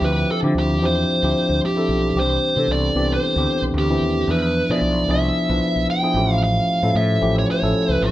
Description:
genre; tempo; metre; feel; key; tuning
polished 1980s jazz-funk pop; 113 BPM; 4/4; swing 54% on 16ths; C major; A4 = 439 Hz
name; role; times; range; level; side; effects
fuzz lead guitar; melody; 0.0-8.1 s; G4 to G5; -22 LUFS; equal; distortion
tine electric piano; accompaniment; 0.0-8.1 s; E3 to B4; -21 LUFS; equal; overdrive
mellow fretless electric bass; bass; 0.0-8.1 s; A1 to D3; -22 LUFS; equal; none
room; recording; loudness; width
moderate large studio reverb, RT60 0.8 s; band playing live in one room; -17 LUFS; side -14 dB against mid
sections
0.0-8.1 A section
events
none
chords
0.0 Dm11; 2.2 Cmaj9; 4.3 E7b9; 6.2 A7b13

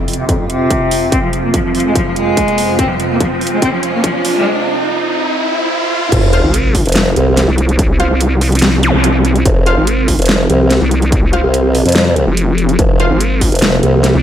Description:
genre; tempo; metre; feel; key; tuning
heavy wobble dubstep; 144 BPM; 4/4; half-time; F minor; A4 = 439 Hz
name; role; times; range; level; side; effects
rich cello; melody; 0.0-4.4 s; F2 to C4; -16 LUFS; equal; low-pass filter, dub echo
evolving wavetable pad; sustained chords; 0.0-14.2 s; F2 to F4; -18 LUFS; right 1 dB; phaser, built-in reverb, sidechain pumping
riser, sub drop and zap; sound effects; 0.0-8.9 s; none; -19 LUFS; equal; none
dubstep drum kit; drums; 0.1-14.1 s; crash cymbal, hi-hat, snare drum; -18 LUFS; equal; none
electronic kick drum; drums; 0.3-13.5 s; none; -16 LUFS; equal; distortion
formant-sweep wobble bass; bass; 6.1-14.1 s; F1 to F2; -12 LUFS; equal; chorus, overdrive
orchestra-hit-like synth stab; stabs; 6.3-13.1 s; F4 to F5; -21 LUFS; left 1 dB; built-in reverb, dub echo
vowel-sweep wobble bass; bass; 6.4-14.2 s; F1 to C2; -13 LUFS; equal; chorus, overdrive
room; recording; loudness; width
light reverb, digital ambience; high-pass filter; -10 LUFS; side -10 dB against mid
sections
0.0-6.1 A section; 6.1-14.2 B section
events
build-up 0.0-6.1; riser 0.0-6.1; filter sweep 0.0-6.1; drum fill 2.8-4.5; drop 6.1-14.2; impact 6.1-7.8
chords
0.0 F5

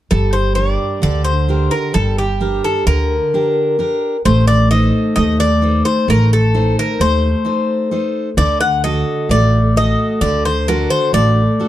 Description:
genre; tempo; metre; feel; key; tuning
greek folk, Greek bouzouki band; 130 BPM (eighths); 9/8; straight; G harmonic minor; A4 = 440 Hz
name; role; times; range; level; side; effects
Greek bouzouki; melody; 0.1-11.7 s; G4 to F#5; -18 LUFS; left 2 dB; none
fingerpicked steel-string acoustic guitar; accompaniment; 0.1-11.7 s; D3 to C5; -18 LUFS; right 1 dB; none
upright bass; bass; 0.1-11.4 s; G1 to Eb2; -16 LUFS; equal; none
room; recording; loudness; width
light reverb; dark, warm production; -13 LUFS; side -13 dB against mid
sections
0.1-11.7 A section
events
none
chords
0.1 Gm; 4.2 Adim; 8.4 D

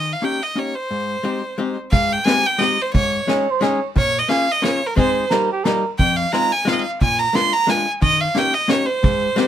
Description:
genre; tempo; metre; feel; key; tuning
musette waltz; 177 BPM; 3/4; straight; Ab major; A4 = 436 Hz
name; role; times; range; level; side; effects
clear violin; melody; 0.0-9.5 s; Bb4 to C6; -19 LUFS; right 2 dB; none
archtop guitar, miked and amplified; accompaniment; 0.0-9.5 s; F2 to Ab4; -22 LUFS; left 3 dB; none
vintage brush drum kit; drums; 1.9-9.5 s; kick drum, ride cymbal, snare drum; -21 LUFS; right 1 dB; none
dark cor anglais; second line; 3.3-5.9 s; G4 to Db5; -20 LUFS; right 4 dB; none
room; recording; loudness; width
light reverb; minimal, uncompressed stereo recording; -16 LUFS; side -10 dB against mid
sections
0.0-1.9 A section; 1.9-9.5 A section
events
none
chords
0.0 Eb7; 0.9 Abmaj7; 2.9 Dbsus2/Ab; 4.0 Bbm7; 5.0 Ab; 5.3 Eb; 6.0 Fm7; 7.0 Bb7; 8.0 Eb7

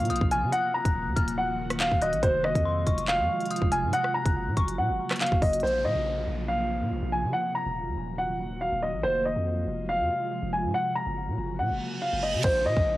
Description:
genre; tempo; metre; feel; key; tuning
hip hop, drill; 141 BPM; 4/4; half-time; Bb minor; A4 = 440 Hz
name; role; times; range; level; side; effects
dark baby grand piano; melody; 0.0-13.0 s; C5 to Bb5; -27 LUFS; equal; low-pass filter
ethereal airy pad; sustained chords; 0.0-12.4 s; C3 to Gb4; -33 LUFS; equal; ensemble chorus, built-in reverb, cassette tape
long sustained 808-style bass; bass; 0.0-13.0 s; Eb1 to Db3; -32 LUFS; equal; none
drill drum kit; drums; 0.0-5.7, 12.4-12.9 s; crash cymbal, handclaps, hi-hat, kick drum, rim click; -27 LUFS; equal; cassette tape
dark detuned synth bell; second line; 0.1-4.8 s; C6 to Gb6; -35 LUFS; left 4 dB; chorus, cassette tape, analog delay
downlifter and reverse cymbal; sound effects; 5.6-9.0, 11.8-13.0 s; none; -38 LUFS; right 2 dB; none
room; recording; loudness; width
light reverb; home recording on cassette; -24 LUFS; side -16 dB against mid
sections
0.0-5.6 A section; 5.6-12.4 B section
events
reverse cymbal 11.8-12.4; hi-hats muted 12.4-13.0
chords
0.0 Bbsus2; 0.5 Ebm; 2.2 Fm; 3.9 Gb; 5.6 Bbsus2; 7.3 Ebm; 9.0 Fm; 10.7 Gb; 12.4 Bb5

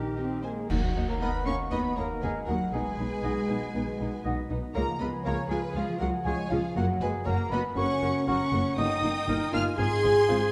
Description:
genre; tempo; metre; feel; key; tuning
cinematic, playful, whimsical film cue; 119 BPM; 4/4; straight; Eb minor; A4 = 438 Hz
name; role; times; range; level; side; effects
large celesta; melody; 0.0-10.5 s; Eb5 to Ab6; -38 LUFS; equal; none
mellow large flute ensemble; second line; 0.0-10.4 s; F5 to G5; -45 LUFS; equal; none
warm clarinet; second line; 0.0-10.5 s; Eb4 to Ab5; -39 LUFS; equal; none
warm oboe; second line; 0.0-10.4 s; Bb4 to D#5; -45 LUFS; equal; none
dark French horn section; sustained chords; 0.0-10.5 s; Eb3 to Ab4; -35 LUFS; equal; none
concert harp; arpeggios; 0.0-10.5 s; Gb2 to B5; -39 LUFS; equal; none
rich studio cello section; bass; 0.0-10.5 s; F3 to Ab4; -37 LUFS; equal; none
rich studio double bass section; bass; 0.0-10.4 s; Gb1 to Eb2; -36 LUFS; equal; none
warm studio violin section; melody; 0.2-10.5 s; G4 to Ab6; -43 LUFS; equal; none
rich studio violin section; second line; 0.2-10.5 s; Eb4 to C6; -42 LUFS; equal; none
dark studio viola section; accompaniment; 0.2-10.4 s; Ab3 to Gb4; -37 LUFS; equal; none
clash cymbals and concert bass drum; percussion; 0.7-1.7 s; none; -36 LUFS; equal; none
room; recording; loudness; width
wet scoring stage reverb, RT60 1.6 s; dark, warm production; -28 LUFS; mono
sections
0.7-10.5 A section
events
band accent 0.7-1.2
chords
0.0 Eb; 0.7 Ebm; 2.7 B; 4.8 Db; 6.8 Gb; 8.8 Eb/G; 9.8 Fm/Ab

